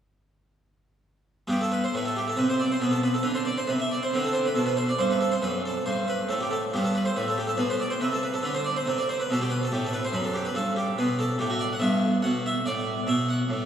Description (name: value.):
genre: classical, baroque-style suite movement for harpsichord.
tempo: 94 BPM (dotted quarters).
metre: 12/8.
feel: rubato.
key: G major.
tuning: A4 = 439 Hz.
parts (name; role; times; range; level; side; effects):
harpsichord; solo; 1.5-13.7 s; F#2 to F#5; -24 LUFS; right 1 dB; none.
room: wet huge ambient reverb, RT60 8.0 s.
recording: in a vast, echoing space, studio reverb, faint mains hum.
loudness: -24 LUFS.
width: side -9 dB against mid.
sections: 1.5-13.7 A section.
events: none.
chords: 1.5 G; 4.1 D7; 11.8 Em/G.